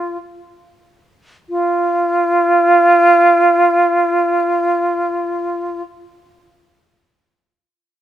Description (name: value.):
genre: classical, baroque-style fantasia for unaccompanied flute.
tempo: free time.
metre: none.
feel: none.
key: unclear.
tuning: A4 = 437 Hz.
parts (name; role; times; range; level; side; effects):
silver concert flute; solo; 0.0-5.8 s; F4; -12 LUFS; right 1 dB; none.
room: moderate recital hall reverb, RT60 1.7 s.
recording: dark, warm production.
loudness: -12 LUFS.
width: side -11 dB against mid.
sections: 0.0-1.5 A section; 1.5-6.4 B section.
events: slowing down 0.0-1.5.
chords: none.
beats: free time.